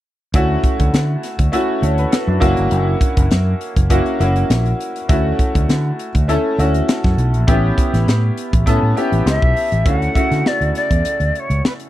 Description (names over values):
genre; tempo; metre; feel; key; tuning
polished 1980s jazz-funk pop; 101 BPM; 4/4; swing 54% on 16ths; D major; A4 = 440 Hz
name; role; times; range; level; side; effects
clear baby grand piano; accompaniment; 0.3-11.9 s; C#3 to C#5; -20 LUFS; equal; analog chorus
fingered electric bass; bass; 0.3-11.6 s; F#1 to D3; -17 LUFS; equal; none
crisp fusion drum kit; drums; 0.3-11.9 s; hi-hat, kick drum, snare drum; -17 LUFS; equal; none
shakuhachi; melody; 9.3-11.7 s; B4 to F#5; -20 LUFS; left 1 dB; none
room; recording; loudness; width
little or no reverb; dry, close 1970s-style studio recording; -14 LUFS; side -14 dB against mid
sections
0.3-9.9 A section; 9.9-11.9 B section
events
none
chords
0.3 Dmaj7; 2.4 F#7; 5.1 Dmaj7; 7.5 A7; 9.9 Dmaj7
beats
| 0.34 0.93 1.53 2.12 | 2.72 3.31 3.91 4.50 | 5.10 5.69 6.29 6.88 | 7.48 8.07 8.67 9.26 | 9.86 10.45 11.05 11.64